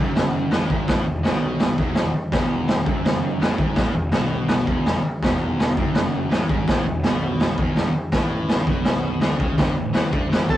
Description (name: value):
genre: garage rock duo or trio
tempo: 166 BPM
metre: 4/4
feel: straight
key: E mixolydian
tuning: A4 = 440 Hz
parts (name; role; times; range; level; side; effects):
- overdriven electric guitar; riff; 0.0-10.6 s; E2 to E3; -25 LUFS; equal; none
- fuzz picked electric bass; bass; 0.0-10.6 s; E1 to E2; -28 LUFS; equal; overdrive
- raw garage drum kit; drums; 0.2-10.6 s; kick drum, snare drum, toms; -20 LUFS; equal; none
- combo organ; melody; 10.5-10.6 s; A4; -21 LUFS; right 1 dB; none
room: light reverb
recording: rough rehearsal-room recording, warm saturation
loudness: -19 LUFS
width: side -13 dB against mid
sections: 0.0-10.6 A section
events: none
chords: 0.0 E; 8.1 A5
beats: 0.17 0.53 | 0.89 1.25 1.61 1.97 | 2.33 2.69 3.05 3.42 | 3.78 4.14 4.50 4.86 | 5.23 5.59 5.95 6.31 | 6.68 7.04 7.40 7.77 | 8.13 8.49 8.86 9.22 | 9.58 9.95 10.31